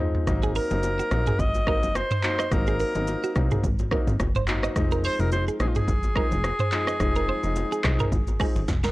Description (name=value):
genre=afrobeats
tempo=107 BPM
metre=4/4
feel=swing 55% on 16ths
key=Ab mixolydian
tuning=A4 = 443 Hz
part: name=clear grand piano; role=accompaniment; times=0.0-8.6 s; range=F3 to Eb4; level=-31 LUFS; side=left 2 dB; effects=none
part: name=deep house drum kit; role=drums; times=0.1-8.9 s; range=handclaps, hi-hat, kick drum, rim click, shaker, snare drum, toms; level=-26 LUFS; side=equal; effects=none
part: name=plucky analog bass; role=bass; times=0.3-8.9 s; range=F1 to C2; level=-27 LUFS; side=equal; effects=none
part: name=congas and bongos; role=percussion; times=0.3-8.8 s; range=none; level=-37 LUFS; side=left 2 dB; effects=none
part: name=clean electric guitar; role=riff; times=0.4-8.9 s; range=Gb4 to Eb5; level=-32 LUFS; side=right 5 dB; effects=none
part: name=breathy alto saxophone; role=melody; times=0.6-8.7 s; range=F4 to Eb5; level=-29 LUFS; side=equal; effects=analog delay
room=digital ambience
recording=dry, gritty hardware recording, transformer saturation, cassette tape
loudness=-22 LUFS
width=side -19 dB against mid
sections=0.0-8.9 A section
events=drum fill 0.0, 8.7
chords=0.3 Ab9; 4.8 Fm7